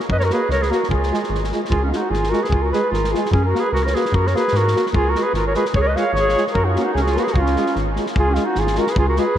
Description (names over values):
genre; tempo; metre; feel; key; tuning
balkan folk, Balkan brass band; 149 BPM; 2/4; swing 55% on 16ths; Db mixolydian; A4 = 440 Hz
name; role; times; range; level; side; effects
warm soul drum kit; percussion; 0.0-9.2 s; kick drum, snare drum; -26 LUFS; equal; none
mellow flugelhorn; melody; 0.1-9.4 s; Eb4 to F5; -21 LUFS; equal; slapback echo
warm clarinet; second line; 0.1-9.4 s; Cb4 to Db5; -23 LUFS; right 3 dB; slapback echo
rubbery square bass; bass; 0.1-9.4 s; Ab1 to Ab2; -20 LUFS; equal; none
clear trombone; accompaniment; 0.3-9.2 s; Ab3 to Bb3; -28 LUFS; right 5 dB; none
mellow euphonium; accompaniment; 0.3-9.3 s; F4 to Gb4; -28 LUFS; left 7 dB; none
room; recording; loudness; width
moderate huge ambient reverb, RT60 8.6 s; in a vast, echoing space; -16 LUFS; side -10 dB against mid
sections
0.0-1.7 A section; 1.7-8.2 B section; 8.2-9.4 B section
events
none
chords
0.1 Gb; 0.9 Db; 3.3 Gb; 4.9 Db; 6.6 Gb; 7.4 Db